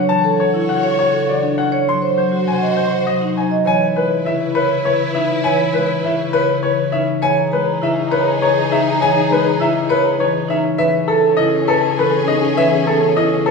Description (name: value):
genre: classical, minimalist pattern music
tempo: 101 BPM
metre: 3/4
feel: straight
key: C# minor from 3.7 s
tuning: A4 = 442 Hz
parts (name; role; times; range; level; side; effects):
- concert harp; accompaniment; 0.0-13.5 s; B#2 to D#4; -22 LUFS; left 5 dB; none
- marimba with medium hard mallets; arpeggios; 0.0-13.5 s; D4 to D#5; -18 LUFS; right 5 dB; none
- bright grand piano; melody; 0.1-13.5 s; A4 to B#5; -19 LUFS; left 5 dB; none
- warm studio string section; sustained chords; 0.1-13.5 s; C#4 to C#5; -22 LUFS; left 2 dB; none
room: wet recital hall reverb, RT60 1.6 s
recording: recorded in a church or concert hall, studio ambience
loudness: -14 LUFS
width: side -4 dB against mid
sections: 0.0-3.7 A section; 3.7-13.5 B section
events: none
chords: 0.1 Dmaj7 (rootless); 1.9 G#7; 3.7 C#m7; 10.8 Amaj9